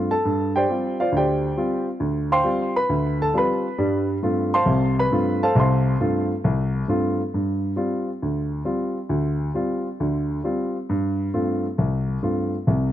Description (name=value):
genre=jazz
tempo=135 BPM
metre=4/4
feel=swing 67% on 8ths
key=G mixolydian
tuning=A4 = 440 Hz
part: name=dark baby grand piano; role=solo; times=0.0-12.9 s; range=C2 to C6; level=-20 LUFS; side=equal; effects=none
room=light reverb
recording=dry, close 1970s-style studio recording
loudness=-20 LUFS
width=side -12 dB against mid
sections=0.0-7.3 A section; 7.3-12.9 B section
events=none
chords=0.2 G7sus4; 3.8 F; 7.3 G7sus4; 10.9 F